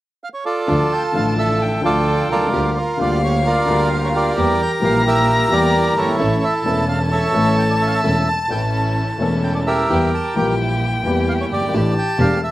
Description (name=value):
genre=tango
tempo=131 BPM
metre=4/4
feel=rubato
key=D harmonic minor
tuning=A4 = 440 Hz
part: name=bandoneon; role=melody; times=0.2-12.5 s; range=E4 to A5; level=-19 LUFS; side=right 2 dB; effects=none
part: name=warm violin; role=second line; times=0.7-12.5 s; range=F5 to Bb5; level=-23 LUFS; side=left 2 dB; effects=slapback echo
part: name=warm baby grand piano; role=accompaniment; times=0.7-12.4 s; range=E1 to A4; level=-22 LUFS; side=left 3 dB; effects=none
part: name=warm studio string section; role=stabs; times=0.7-12.4 s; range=A3 to A4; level=-26 LUFS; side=right 2 dB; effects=none
part: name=dark double bass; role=bass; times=0.7-12.4 s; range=E1 to E2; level=-22 LUFS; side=right 1 dB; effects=none
room=little or no reverb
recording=recorded outdoors, with no room sound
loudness=-15 LUFS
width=side -15 dB against mid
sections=0.7-12.5 A section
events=none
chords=0.0 F6; 0.7 Dm; 2.5 Gm7/D; 4.4 Edim; 6.2 A; 9.9 Edim; 11.7 A7sus4